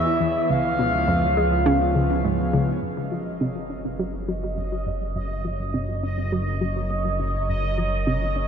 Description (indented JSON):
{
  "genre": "ambient, sequencer-driven space music",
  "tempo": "103 BPM",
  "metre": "4/4",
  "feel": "straight",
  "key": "Gb major",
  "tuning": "A4 = 440 Hz",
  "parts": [
    { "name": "expressive synth lead", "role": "melody", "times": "0.0-2.2 s", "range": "E5 to E#5", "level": "-25 LUFS", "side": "equal", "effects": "wide subtle chorus, analog delay" },
    { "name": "lush unison pad", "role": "sustained chords", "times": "0.0-8.5 s", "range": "E3 to C#5", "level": "-29 LUFS", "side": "right 1 dB", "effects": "chorus" },
    { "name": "analog pluck", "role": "riff", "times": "0.0-8.5 s", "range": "C#2 to Db4", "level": "-26 LUFS", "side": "equal", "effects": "chorus, analog delay" },
    { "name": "fat analog bass", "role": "bass", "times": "0.0-8.5 s", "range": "Gb1 to E2", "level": "-27 LUFS", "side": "equal", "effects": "none" },
    { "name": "bubbling stepped-filter texture", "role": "texture", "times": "2.8-8.5 s", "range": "Eb5", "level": "-31 LUFS", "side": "right 3 dB", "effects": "chorus, built-in reverb" }
  ],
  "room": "wet huge ambient reverb, RT60 7.5 s",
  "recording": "dark, warm production, nothing above 10.5 kHz",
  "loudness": "-21 LUFS",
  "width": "side -7 dB against mid",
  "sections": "0.0-2.8 A section; 2.8-8.5 B section",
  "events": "filter sweep on synth arpeggio sound 0.0-2.8, 2.8-8.5; fade-in on analog synth pad 2.8-8.5",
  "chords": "0.5 C#7; 2.8 Gb",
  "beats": "| 0.50 1.08 1.66 2.24 | 2.83 3.41 3.99 4.57 | 5.16 5.74 6.32 6.90 | 7.49 8.07"
}